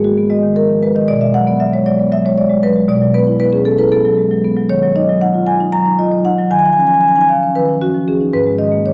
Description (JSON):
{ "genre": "classical, contemporary piece for solo marimba", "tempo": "232 BPM (eighths)", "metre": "7/8", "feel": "rubato", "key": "unclear", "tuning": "A4 = 437 Hz", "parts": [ { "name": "marimba with medium mallets", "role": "solo", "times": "0.0-8.9 s", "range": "G#2 to A#5", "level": "-14 LUFS", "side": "equal", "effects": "none" } ], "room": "wet recital hall reverb, RT60 1.6 s", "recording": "none", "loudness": "-14 LUFS", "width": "mono", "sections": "0.0-8.9 A section", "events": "none", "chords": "0.0 B6/G#; 1.1 B5; 4.7 D#m; 6.5 C#add9/D#; 8.3 G#sus2" }